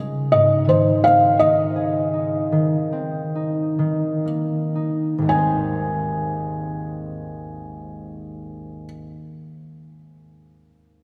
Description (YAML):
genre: children's music, lullaby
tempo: 37-58 BPM (dotted quarters)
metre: 6/8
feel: straight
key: Ab major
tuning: A4 = 440 Hz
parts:
  - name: concert harp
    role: accompaniment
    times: 0.0-9.1 s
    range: Ab1 to C5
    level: -25 LUFS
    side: equal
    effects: none
  - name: felt-muted upright piano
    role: melody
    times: 0.3-8.9 s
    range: C5 to Ab5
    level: -22 LUFS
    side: equal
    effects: none
room: wet cathedral reverb, RT60 4.8 s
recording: recorded in a church or concert hall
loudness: -20 LUFS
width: mono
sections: 0.0-5.3 A section; 5.3-11.0 B section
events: slowing down 0.3-5.3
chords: 0.3 Ab; 2.5 Cm/Eb; 3.8 Eb5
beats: | 0.32 1.38 | 2.52 3.79 | 5.28 6.90 | 8.50